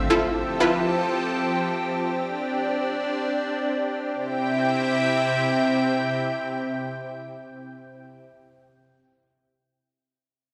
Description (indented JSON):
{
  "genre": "pop",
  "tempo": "free time",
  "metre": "none",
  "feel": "none",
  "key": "C major",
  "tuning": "A4 = 439 Hz",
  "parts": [
    { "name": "lush unison pad", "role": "sustained chords", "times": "0.0-8.2 s", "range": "C3 to G5", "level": "-26 LUFS", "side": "equal", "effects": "chorus" },
    { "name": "unison pluck", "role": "accompaniment", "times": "0.1-1.1 s", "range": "E4 to B4", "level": "-24 LUFS", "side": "equal", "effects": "none" }
  ],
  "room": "wet plate reverb, RT60 1.6 s, digital ambience",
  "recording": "played on a big sound system in a bare room, large studio reverb",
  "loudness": "-25 LUFS",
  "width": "mono",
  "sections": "0.0-4.1 A section; 4.1-8.2 B section",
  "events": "none",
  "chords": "0.1 Fmaj7; 2.1 Csus2; 4.1 C"
}